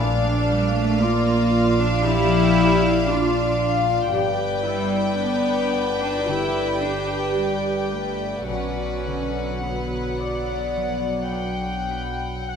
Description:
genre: cinematic, emotional film score for orchestra.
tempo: 52-58 BPM.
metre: 4/4.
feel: rubato.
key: B minor.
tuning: A4 = 439 Hz.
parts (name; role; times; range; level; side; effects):
warm symphonic violin section; melody; 0.0-12.6 s; E#5 to G5; -31 LUFS; left 2 dB; none.
warm studio violin section; second line; 0.0-12.6 s; B4 to G5; -26 LUFS; left 3 dB; none.
dark studio viola section; accompaniment; 0.0-12.4 s; F#3 to G4; -27 LUFS; right 3 dB; none.
concert harp; arpeggios; 0.0-12.6 s; G2 to D6; -27 LUFS; left 8 dB; none.
warm chamber double bass section; bass; 0.0-12.6 s; G1 to B1; -28 LUFS; right 3 dB; none.
rich symphonic cello section; bass; 0.5-11.9 s; G3 to E4; -25 LUFS; right 2 dB; none.
room: wet scoring stage reverb, RT60 1.6 s.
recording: none.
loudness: -19 LUFS.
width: side -7 dB against mid.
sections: 0.0-12.6 A section.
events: none.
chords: 0.0 A#; 4.1 G; 8.5 Bm.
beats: 1.00 2.04 3.08 | 4.12 5.19 6.27 7.36 | 8.49 9.64 10.76 11.90.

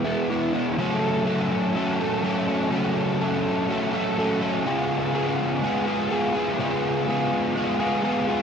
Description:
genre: rock.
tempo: 124 BPM.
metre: 4/4.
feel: straight.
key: F# minor.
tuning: A4 = 440 Hz.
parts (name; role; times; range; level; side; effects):
crunchy overdriven guitar; solo; 0.0-8.4 s; F#2 to A4; -22 LUFS; equal; analog chorus, analog delay.
room: light reverb, digital ambience.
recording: dark, warm production.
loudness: -22 LUFS.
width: side -7 dB against mid.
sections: 0.8-8.4 A section.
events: none.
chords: 0.0 E; 0.8 F#m; 4.7 C#7.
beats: 0.29 | 0.77 1.26 1.75 2.23 | 2.71 3.20 3.69 4.17 | 4.66 5.14 5.62 6.11 | 6.59 7.08 7.56 8.04.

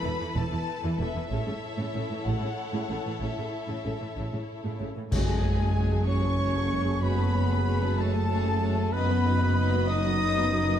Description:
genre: cinematic, epic orchestral film score.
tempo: 63 BPM (dotted quarters).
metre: 6/8.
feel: straight.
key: F# dorian from 5.1 s.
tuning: A4 = 440 Hz.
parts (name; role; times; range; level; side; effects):
rich symphonic violin section; melody; 0.0-10.8 s; E5 to D#6; -37 LUFS; left 3 dB; none.
rich studio violin section; second line; 0.0-10.8 s; G#4 to D#5; -37 LUFS; left 3 dB; none.
rich studio viola section; accompaniment; 0.0-10.8 s; C#3 to G#4; -35 LUFS; right 1 dB; none.
mellow French horn section; sustained chords; 0.0-10.8 s; G#3 to A4; -32 LUFS; left 7 dB; none.
rich studio double bass section; bass; 0.0-10.8 s; E1 to A1; -30 LUFS; right 2 dB; none.
warm symphonic cello section; bass; 0.0-10.8 s; E2 to A2; -31 LUFS; right 2 dB; none.
mellow hollow concert flute; second line; 5.1-10.8 s; G#5 to D#6; -36 LUFS; equal; none.
dark trumpet; stabs; 5.1-10.8 s; G#4 to D#5; -33 LUFS; right 2 dB; none.
clash cymbals and concert bass drum; percussion; 5.1-6.4 s; none; -32 LUFS; equal; none.
timpani; percussion; 5.1-6.0 s; F#2; -32 LUFS; left 2 dB; none.
room: wet scoring stage reverb, RT60 2.2 s.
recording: dark, warm production.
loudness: -25 LUFS.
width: side -10 dB against mid.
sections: 0.0-5.1 A section; 5.1-10.8 B section.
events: band accent 5.1-5.8.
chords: 0.0 Esus4; 1.3 A; 5.1 F#madd9; 8.9 B/F#.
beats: 0.36 | 1.31 2.26 | 3.22 4.17 | 5.12 6.07 | 7.03 7.98 | 8.93 9.88.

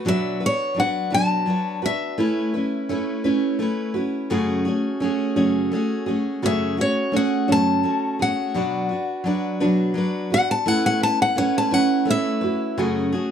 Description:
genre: acoustic folk duo or small band.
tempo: 57 BPM (dotted quarters).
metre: 6/8.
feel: straight.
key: unclear.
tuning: A4 = 440 Hz.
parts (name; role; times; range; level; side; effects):
picked steel-string acoustic guitar; accompaniment; 0.0-13.3 s; F#2 to B4; -23 LUFS; left 2 dB; none.
felt-muted upright piano; arpeggios; 0.0-13.3 s; C#4 to F#4; -25 LUFS; right 8 dB; none.
picked steel-string acoustic guitar; melody; 0.1-3.2, 6.5-12.8 s; C#5 to A5; -22 LUFS; left 3 dB; none.
room: moderate studio ambience, RT60 0.5 s.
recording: dark, warm production.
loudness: -19 LUFS.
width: side -8 dB against mid.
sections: 0.1-13.3 A section.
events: steel-string acoustic guitar solo 0.1-13.3.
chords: 0.1 Bm; 2.2 Aadd9; 4.3 F#madd9; 8.5 Bm; 10.7 Aadd9; 12.8 F#madd9.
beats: | 0.06 1.12 | 2.18 3.24 | 4.30 5.37 | 6.43 7.49 | 8.55 9.61 | 10.67 11.73 | 12.79.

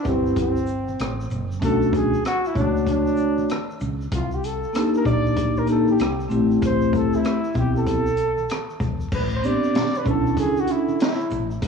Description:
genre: hip hop, jazz-hop.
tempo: 96 BPM.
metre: 4/4.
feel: swing 64% on 16ths.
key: A dorian.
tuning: A4 = 440 Hz.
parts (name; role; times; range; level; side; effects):
mellow flugelhorn; melody; 0.0-11.5 s; C4 to D5; -26 LUFS; left 1 dB; cassette tape, analog delay.
vibraphone with soft mallets; accompaniment; 0.0-10.9 s; A3 to C#5; -21 LUFS; equal; cassette tape.
congas and egg shaker; percussion; 0.0-11.7 s; none; -37 LUFS; left 4 dB; none.
woody fretless electric bass; bass; 0.1-11.7 s; E1 to D2; -27 LUFS; left 1 dB; wide subtle chorus.
open jazz drum kit; drums; 0.1-11.7 s; crash cymbal, hi-hat, kick drum, rim click, shaker, snare drum; -27 LUFS; equal; none.
room: moderate spring reverb, RT60 2.0 s.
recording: home recording on cassette, small room reverb.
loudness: -19 LUFS.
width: side -6 dB against mid.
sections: 0.0-9.1 A section; 9.1-11.7 B section.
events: none.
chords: 0.0 Am9; 1.6 Bm9; 4.1 Cm9; 6.3 Am9; 9.1 Am11; 10.1 Bm11.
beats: 0.37 0.99 | 1.62 2.24 2.87 3.49 | 4.12 4.74 5.37 5.99 | 6.62 7.24 7.87 8.49 | 9.12 9.74 10.37 10.99 | 11.62.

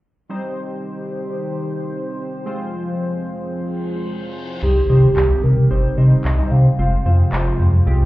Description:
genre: dance-pop.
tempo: 111 BPM.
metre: 4/4.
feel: straight.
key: C minor.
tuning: A4 = 441 Hz.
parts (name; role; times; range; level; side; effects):
chorused polysynth; accompaniment; 0.3-8.0 s; G3 to C5; -27 LUFS; equal; none.
warm analog pad; sustained chords; 0.3-8.1 s; C3 to C5; -26 LUFS; equal; chorus.
reverse cymbal and impact; sound effects; 3.9-6.8 s; none; -30 LUFS; equal; none.
hollow clarinet-like synth lead; melody; 4.6-7.6 s; G4 to F5; -22 LUFS; equal; chorus, tremolo, ping-pong delay.
sub bass with octave; bass; 4.6-8.0 s; F1 to C3; -14 LUFS; equal; none.
deep house drum kit; drums; 4.6-7.5 s; crash cymbal, handclaps; -31 LUFS; equal; none.
room: light reverb, digital ambience.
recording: heard muffled through a wall, club reverb, EQ.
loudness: -16 LUFS.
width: side -17 dB against mid.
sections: 0.3-4.6 A section; 4.6-8.1 B section.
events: reverse cymbal 3.9-4.6; impact 4.6-6.8.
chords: 0.3 Cm; 2.5 Fm; 4.6 Cm; 6.8 Fm.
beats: | 0.30 0.84 1.38 1.92 | 2.46 3.00 3.54 4.08 | 4.62 5.16 5.70 6.25 | 6.79 7.33 7.87.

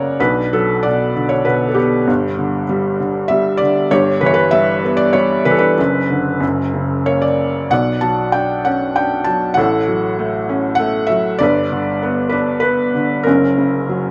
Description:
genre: classical, lyrical solo piano.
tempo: 96 BPM.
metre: 3/4.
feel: rubato.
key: B minor.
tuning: A4 = 439 Hz.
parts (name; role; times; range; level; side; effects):
felt-muted upright piano; solo; 0.0-14.1 s; F#1 to A#5; -16 LUFS; equal; none.
room: moderate studio reverb, RT60 0.7 s.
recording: none.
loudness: -16 LUFS.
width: mono.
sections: 0.2-14.1 A section.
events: felt piano fill 0.0.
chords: 0.2 Bm; 2.1 G; 3.9 Em/G; 5.8 Bm/F#; 6.4 F#; 7.7 Bmadd9; 9.6 F#m/A; 11.4 G; 13.3 F#.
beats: | 0.20 0.84 1.47 | 2.08 2.69 3.30 | 3.91 4.53 5.16 | 5.79 6.42 7.06 | 7.71 8.35 8.98 | 9.59 10.19 10.79 | 11.41 12.02 12.63 | 13.26 13.91.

